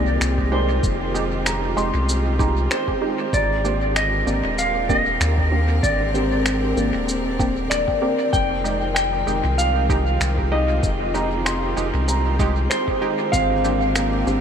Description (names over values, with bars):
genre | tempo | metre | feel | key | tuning
ambient dub | 96 BPM | 4/4 | swing 55% on 16ths | F dorian | A4 = 440 Hz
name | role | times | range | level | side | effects
clean lap steel guitar | melody | 0.0-14.4 s | C5 to G5 | -24 LUFS | equal | dub echo
bright studio string section | sustained chords | 0.0-14.4 s | D3 to Bb4 | -27 LUFS | right 1 dB | none
felt-muted upright piano | arpeggios | 0.0-14.4 s | Bb3 to C6 | -28 LUFS | left 2 dB | dub echo
filtered dub chord stab | stabs | 0.0-14.4 s | Ab3 to G4 | -28 LUFS | right 3 dB | chorus, dub echo
soft dub sub bass | bass | 0.0-14.4 s | Eb1 to Eb2 | -23 LUFS | equal | none
electronic finger snaps and cabasa | drums | 0.2-14.4 s | none | -29 LUFS | equal | studio reverb, dub echo
electronic kick drum | drums | 0.4-13.5 s | none | -25 LUFS | equal | studio reverb
room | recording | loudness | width
light reverb | none | -18 LUFS | side -8 dB against mid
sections
0.0-14.4 A section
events
none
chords
0.0 Fm9; 3.3 Abmaj9#11; 8.3 Fm9; 13.3 Abmaj9#11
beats
0.21 | 0.83 1.46 2.08 2.71 | 3.33 3.96 4.58 5.21 | 5.83 6.46 7.08 7.71 | 8.33 8.96 9.58 10.21 | 10.83 11.46 12.08 12.71 | 13.33 13.96